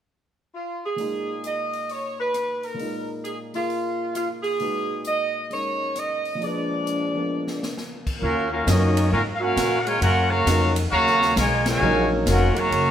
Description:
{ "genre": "jazz, big band swing", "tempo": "133 BPM", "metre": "4/4", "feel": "swing 65% on 8ths", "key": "Eb minor", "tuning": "A4 = 436 Hz", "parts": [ { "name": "warm saxophone section", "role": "melody", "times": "0.5-7.8 s", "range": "F4 to Eb5", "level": "-26 LUFS", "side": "right 1 dB", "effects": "none" }, { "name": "dark concert grand piano", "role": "accompaniment", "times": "1.0-12.9 s", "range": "Bb2 to F5", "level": "-30 LUFS", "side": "equal", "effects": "none" }, { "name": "swinging big-band drum kit", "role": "drums", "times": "1.0-12.9 s", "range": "crash cymbal, hi-hat, kick drum, ride cymbal, rim click, snare drum", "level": "-31 LUFS", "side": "equal", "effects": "none" }, { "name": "warm trombone section", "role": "second line", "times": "6.4-12.9 s", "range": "Bb2 to Gb4", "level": "-26 LUFS", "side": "right 1 dB", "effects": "none" }, { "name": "clear trumpet section", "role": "melody", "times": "8.2-12.9 s", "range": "Db4 to Bb5", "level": "-21 LUFS", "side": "equal", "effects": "none" }, { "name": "upright bass", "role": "bass", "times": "8.2-12.9 s", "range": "F1 to Bb2", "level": "-23 LUFS", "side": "left 1 dB", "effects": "none" } ], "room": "wet stone room reverb, RT60 1.5 s", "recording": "band playing live in one room", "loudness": "-21 LUFS", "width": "side -10 dB against mid", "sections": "1.0-8.2 A section; 8.2-12.9 B section", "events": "drum fill 7.3-7.8; band accent 11.6", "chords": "0.0 N.C.; 1.0 Bb7sus4; 4.6 Abm9/Bb; 6.4 Bb7b9; 8.2 Ebm9", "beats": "0.07 0.53 | 0.98 1.43 1.88 2.34 | 2.79 3.24 3.70 4.15 | 4.60 5.06 5.51 5.96 | 6.41 6.87 7.32 7.77 | 8.22 8.67 9.12 9.57 | 10.02 10.47 10.92 11.37 | 11.82 12.27 12.72" }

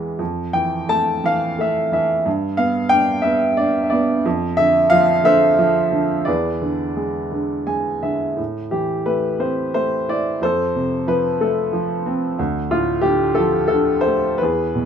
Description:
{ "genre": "classical, lyrical solo piano", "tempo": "56-62 BPM (dotted quarters)", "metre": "6/8", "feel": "rubato", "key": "A minor", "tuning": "A4 = 439 Hz", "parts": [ { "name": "warm baby grand piano", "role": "solo", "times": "0.0-14.9 s", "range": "D2 to A5", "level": "-17 LUFS", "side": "equal", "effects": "none" } ], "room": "little or no reverb", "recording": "close, detailed microphones", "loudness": "-16 LUFS", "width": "side -8 dB against mid", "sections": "0.0-8.4 A section; 8.4-14.9 B section", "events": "grand piano fill 7.3-8.4", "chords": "0.2 Fmaj7; 2.3 G; 4.3 Dm7/F; 6.3 E7; 8.4 Am; 10.4 F; 12.4 Dm", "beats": "| 0.20 1.25 | 2.26 3.25 | 4.25 5.25 | 6.27 7.33 | 8.38 9.41 | 10.42 11.40 | 12.38 13.38 | 14.40" }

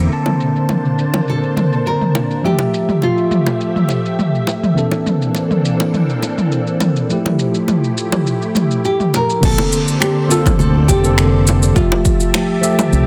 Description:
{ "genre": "sunset chillout", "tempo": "103 BPM", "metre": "4/4", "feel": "straight", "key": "F major", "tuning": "A4 = 441 Hz", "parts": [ { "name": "tine electric piano", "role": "accompaniment", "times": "0.0-13.1 s", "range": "D3 to A5", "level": "-21 LUFS", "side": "equal", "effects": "vintage 12-bit sampler grit, digital delay" }, { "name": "soft string machine", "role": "sustained chords", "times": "0.0-13.1 s", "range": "E3 to A5", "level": "-25 LUFS", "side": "equal", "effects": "phaser, ensemble chorus" }, { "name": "fingered electric bass", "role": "bass", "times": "0.0-0.1, 9.4-13.1 s", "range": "F1 to D2", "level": "-16 LUFS", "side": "equal", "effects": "none" }, { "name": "deep house drum kit", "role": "drums", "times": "0.1-13.0 s", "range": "crash cymbal, finger snaps, shaker, toms", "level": "-21 LUFS", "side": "equal", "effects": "overdrive, low-pass filter on perc, studio ambience, low-pass filter on toms, soft clipping on snare, low-pass filter on snare, low-pass filter on cymbals" }, { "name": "bongos", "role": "percussion", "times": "0.3-12.9 s", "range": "none", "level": "-24 LUFS", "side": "equal", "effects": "none" }, { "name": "nylon-string guitar", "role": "melody", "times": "1.3-4.4, 8.8-13.1 s", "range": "F4 to Bb4", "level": "-22 LUFS", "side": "equal", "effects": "digital delay" }, { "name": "electronic kick drum", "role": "drums", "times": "9.4-12.2 s", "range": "none", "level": "-20 LUFS", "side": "equal", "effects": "overdrive, studio ambience" } ], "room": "light reverb", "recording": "dense, heavily limited modern master", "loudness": "-16 LUFS", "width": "mono", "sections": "0.1-9.4 A section; 9.4-13.1 B section", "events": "none", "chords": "0.1 Bbmaj9; 2.4 Fmaj9; 4.8 C13/E; 7.1 Fmaj9; 9.4 Bbmaj9; 11.8 Fmaj9", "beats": "| 0.11 0.69 1.27 1.86 | 2.44 3.02 3.60 4.19 | 4.77 5.35 5.93 6.52 | 7.10 7.68 8.26 8.85 | 9.43 10.01 10.59 11.18 | 11.76 12.34 12.92" }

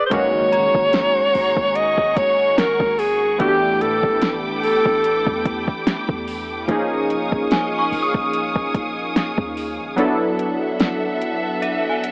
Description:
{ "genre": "contemporary R&B", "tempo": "73 BPM", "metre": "4/4", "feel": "swing 54% on 16ths", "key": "unclear", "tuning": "A4 = 440 Hz", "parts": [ { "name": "breathy alto saxophone", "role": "melody", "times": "0.0-5.4 s", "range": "G4 to D#5", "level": "-20 LUFS", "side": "equal", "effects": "digital delay" }, { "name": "warm analog keys", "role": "accompaniment", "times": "0.1-12.1 s", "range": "D#3 to A4", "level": "-26 LUFS", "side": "equal", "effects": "chorus" }, { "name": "rich studio string section", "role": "sustained chords", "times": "0.1-12.1 s", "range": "G#4 to D#6", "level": "-29 LUFS", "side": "equal", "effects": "sidechain pumping" }, { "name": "clean 808-style bass", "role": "bass", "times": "0.1-10.0 s", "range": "D#1 to A2", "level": "-37 LUFS", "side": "equal", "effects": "none" }, { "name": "smooth R&B drum kit", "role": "drums", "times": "0.1-12.1 s", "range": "hi-hat, kick drum, snare drum", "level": "-24 LUFS", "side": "equal", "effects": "overdrive, vintage 12-bit sampler grit" }, { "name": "impact", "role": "sound effects", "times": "0.1-3.4 s", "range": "none", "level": "-41 LUFS", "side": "equal", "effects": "none" }, { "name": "synth chime", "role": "texture", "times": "0.5-12.1 s", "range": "E5 to D#6", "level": "-29 LUFS", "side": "equal", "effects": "ensemble chorus, phaser, digital delay" } ], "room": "light reverb", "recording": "AM radio sound", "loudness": "-20 LUFS", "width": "mono", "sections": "0.1-12.1 A section", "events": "impact 0.1-3.4; kick muted 10.0-12.1", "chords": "0.1 G#9sus4; 3.4 A9sus4; 6.7 D#9sus4; 10.0 E9sus4", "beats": "| 0.12 0.94 1.76 2.58 | 3.40 4.22 5.05 5.87 | 6.69 7.51 8.33 9.16 | 9.98 10.80 11.62" }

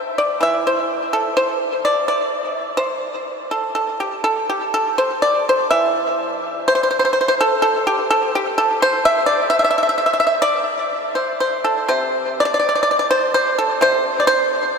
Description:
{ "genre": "chinese traditional, Chinese solo plucked strings", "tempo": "63 BPM", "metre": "2/4", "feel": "rubato", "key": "E jue mode", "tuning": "A4 = 442 Hz", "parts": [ { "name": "pipa", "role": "solo", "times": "0.0-14.8 s", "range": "C3 to E5", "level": "-16 LUFS", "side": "equal", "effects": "diffuse ambient delay" } ], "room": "wet huge ambient reverb, RT60 8.1 s", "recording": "dreamy mix soaked in reverb", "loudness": "-16 LUFS", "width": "side -5 dB against mid", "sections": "0.0-4.2 A section; 4.2-14.8 B section", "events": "none", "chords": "none", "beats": "| 0.41 1.34 | 2.29 3.26 | 4.25 5.22 | 6.18 7.14 | 8.08 9.01 | 9.95 10.92 | 11.90 12.87 | 13.83 14.76" }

